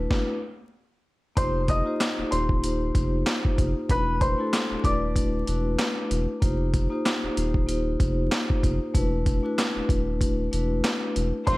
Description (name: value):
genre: hip hop, boom-bap hip-hop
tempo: 95 BPM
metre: 4/4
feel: swing 56% on 16ths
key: unclear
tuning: A4 = 439 Hz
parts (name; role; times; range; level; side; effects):
- vibraphone with soft mallets; accompaniment; 0.0-11.6 s; A3 to C5; -28 LUFS; left 1 dB; cassette tape
- soft dub sub bass; bass; 0.0-11.6 s; Eb1 to F1; -27 LUFS; equal; none
- boom bap sampler-style drum kit; drums; 0.1-11.6 s; handclaps, hi-hat, kick drum, snare drum; -25 LUFS; equal; none
- dark upright piano; melody; 1.4-6.4, 11.5-11.6 s; B4 to Eb6; -28 LUFS; left 1 dB; digital delay
- clear studio string section; sustained chords; 11.5-11.6 s; Eb3 to F4; -33 LUFS; equal; none
room: light reverb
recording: vinyl crackle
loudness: -22 LUFS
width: side -20 dB against mid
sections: 0.0-1.4 A section; 1.4-11.6 B section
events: stop 0.1-1.4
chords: 0.0 E9sus4; 1.4 F9sus4; 3.9 E9sus4; 6.4 F9sus4; 8.9 E9sus4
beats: 0.11 0.74 | 1.37 2.00 2.63 3.26 | 3.90 4.53 5.16 5.79 | 6.42 7.05 7.68 8.32 | 8.95 9.58 10.21 10.84 | 11.47